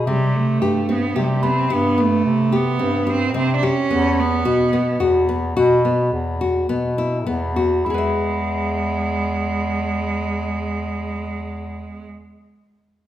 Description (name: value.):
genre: contemporary instrumental, chamber music in an uneven meter.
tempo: 102-110 BPM.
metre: 7/4.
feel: straight.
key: E major.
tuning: A4 = 440 Hz.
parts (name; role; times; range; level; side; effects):
nylon-string guitar; arpeggios; 0.0-12.2 s; B3 to E5; -22 LUFS; left 3 dB; none.
warm bass clarinet; bass; 0.0-12.1 s; E2 to C3; -22 LUFS; left 1 dB; none.
rich cello; melody; 0.1-12.1 s; G3 to D4; -22 LUFS; right 5 dB; none.
tine electric piano; texture; 1.4-12.1 s; B5; -28 LUFS; left 2 dB; fast stereo tremolo.
room: wet recital hall reverb, RT60 1.5 s.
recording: none.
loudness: -17 LUFS.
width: side -12 dB against mid.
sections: 0.0-7.9 A section; 7.9-12.0 B section.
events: slowing down 3.4-7.9.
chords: 0.1 C5; 3.9 Esus2; 7.9 E.